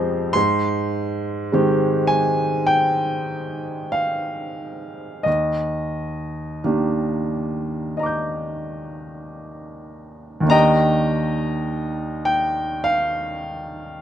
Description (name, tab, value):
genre	classical, impressionist solo piano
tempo	43-52 BPM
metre	4/4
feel	rubato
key	Eb major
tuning	A4 = 437 Hz
part	clear baby grand piano	solo	0.0-14.0 s	Eb2 to G6	-20 LUFS	equal	none
room	light reverb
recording	none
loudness	-19 LUFS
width	side -10 dB against mid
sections	0.0-10.5 A section; 10.5-14.0 A section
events	none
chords	0.3 Abmaj7; 5.3 Ebmaj7